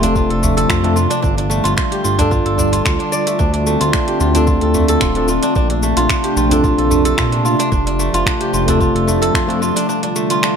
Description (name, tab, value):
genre	organic downtempo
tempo	111 BPM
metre	4/4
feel	swing 54% on 16ths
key	unclear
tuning	A4 = 442 Hz
part	tine electric piano	accompaniment	0.0-9.6 s	A3 to A4	-22 LUFS	left 1 dB	overdrive, sidechain pumping, digital delay
part	warbly tape-like pad	sustained chords	0.0-10.6 s	C3 to F4	-20 LUFS	left 1 dB	chorus, built-in reverb, sidechain pumping
part	kora	arpeggios	0.0-10.6 s	A3 to D5	-18 LUFS	right 2 dB	digital delay
part	smooth synth bass	bass	0.0-9.7 s	D1 to Bb2	-19 LUFS	equal	sidechain pumping
part	deep house drum kit	drums	0.0-10.5 s	finger snaps, hi-hat, shaker	-23 LUFS	left 1 dB	overdrive, small room ambience
part	udu	percussion	0.0-9.2 s	none	-23 LUFS	left 1 dB	none
part	electronic kick drum	drums	0.2-9.5 s	none	-19 LUFS	equal	small room ambience
room	light reverb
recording	none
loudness	-13 LUFS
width	side -7 dB against mid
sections	0.0-10.6 A section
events	none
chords	0.0 F; 1.2 G5; 3.4 Dm7; 5.6 Bbmaj9; 7.7 F; 9.9 Dm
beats	0.15 0.70 | 1.24 1.78 2.32 2.86 | 3.40 3.94 4.48 5.02 | 5.56 6.10 6.64 7.18 | 7.72 8.26 8.80 9.34 | 9.88 10.43